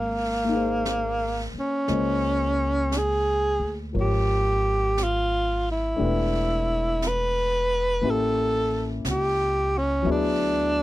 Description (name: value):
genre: jazz ballad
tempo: 58 BPM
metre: 4/4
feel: swing 66% on 8ths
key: unclear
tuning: A4 = 440 Hz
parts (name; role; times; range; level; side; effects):
- breathy tenor saxophone; melody; 0.0-10.8 s; Bb3 to B4; -24 LUFS; right 1 dB; none
- upright bass; bass; 0.0-10.8 s; E1 to D2; -28 LUFS; equal; none
- warm grand piano; accompaniment; 0.4-10.8 s; F3 to Eb5; -30 LUFS; left 5 dB; none
- jazz brush drum kit; drums; 0.9-10.8 s; brushed snare drum, hi-hat, snare drum; -38 LUFS; right 2 dB; none
room: little or no reverb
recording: dry, close 1970s-style studio recording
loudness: -22 LUFS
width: side -16 dB against mid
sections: 0.0-10.8 A section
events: none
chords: 0.0 Abadd9; 1.9 Dbmaj9#11; 6.0 Em7; 8.0 A7b9; 10.1 Dadd9